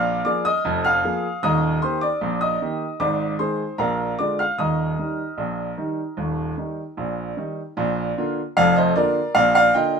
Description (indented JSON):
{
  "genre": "ragtime piano",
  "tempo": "76 BPM",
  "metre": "2/4",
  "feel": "straight",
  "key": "Eb major",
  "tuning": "A4 = 444 Hz",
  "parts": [
    { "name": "clear baby grand piano", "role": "solo", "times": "0.0-10.0 s", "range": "Eb1 to F6", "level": "-19 LUFS", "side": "equal", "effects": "none" }
  ],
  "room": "moderate studio reverb, RT60 0.6 s",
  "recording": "minimal, uncompressed stereo recording",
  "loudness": "-20 LUFS",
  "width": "side -6 dB against mid",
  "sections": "0.0-7.8 A section; 7.8-10.0 B section",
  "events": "none",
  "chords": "0.0 Bb7; 1.4 Eb; 3.0 Ab; 3.8 Bb7; 4.6 Eb; 7.8 Bb"
}